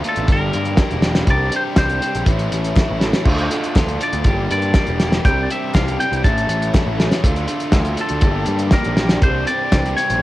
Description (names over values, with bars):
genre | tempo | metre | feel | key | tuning
indie rock | 121 BPM | 4/4 | straight | unclear | A4 = 440 Hz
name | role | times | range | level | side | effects
string machine, cellos | sustained chords | 0.0-10.2 s | Bb3 to D6 | -32 LUFS | right 1 dB | none
biting overdriven guitar | riff | 0.0-10.2 s | G2 to G4 | -23 LUFS | equal | none
cloth-damped thuddy drum kit | drums | 0.0-10.2 s | crash cymbal, hi-hat, kick drum, snare drum | -17 LUFS | equal | cassette tape
twangy electric guitar | melody | 0.1-10.2 s | A4 to A5 | -22 LUFS | left 1 dB | cassette tape
fuzz picked electric bass | bass | 0.2-10.2 s | E1 to G2 | -22 LUFS | equal | overdrive
group handclap | percussion | 0.8-9.8 s | none | -37 LUFS | left 7 dB | none
room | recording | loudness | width
light reverb, small room ambience | home recording on cassette | -15 LUFS | side -16 dB against mid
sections
0.0-10.2 A section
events
none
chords
0.3 Gm; 1.3 Csus2; 2.3 A; 3.3 Dm; 4.3 Gm; 5.2 Csus2; 6.2 A; 7.2 Dm; 8.2 Gm; 9.2 Csus2